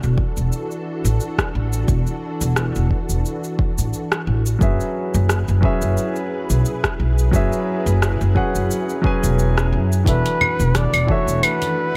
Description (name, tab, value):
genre	sunset chillout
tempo	88 BPM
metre	4/4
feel	swing 54% on 16ths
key	E mixolydian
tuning	A4 = 440 Hz
part	soft string machine	sustained chords	0.0-12.0 s	E3 to B4	-30 LUFS	equal	ensemble chorus
part	upright bass	bass	0.0-11.4 s	E1 to F#2	-21 LUFS	equal	none
part	deep house drum kit	drums	0.0-11.7 s	cabasa, claves, hi-hat, rim click	-26 LUFS	equal	none
part	electronic kick drum	drums	0.2-11.2 s	none	-23 LUFS	equal	none
part	warm grand piano	accompaniment	4.6-12.0 s	E3 to G#5	-25 LUFS	equal	digital delay
part	trumpet with bucket mute	melody	10.1-12.0 s	B4 to D5	-24 LUFS	equal	digital delay
part	congas	percussion	10.4-11.7 s	none	-30 LUFS	equal	none
room	light reverb, small room ambience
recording	none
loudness	-19 LUFS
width	mono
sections	0.0-12.0 A section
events	none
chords	0.0 E9sus4; 4.6 F#9sus4; 10.1 E9sus4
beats	0.52 1.20 | 1.89 2.57 3.25 3.93 | 4.61 5.29 5.98 6.66 | 7.34 8.02 8.70 9.39 | 10.07 10.75 11.43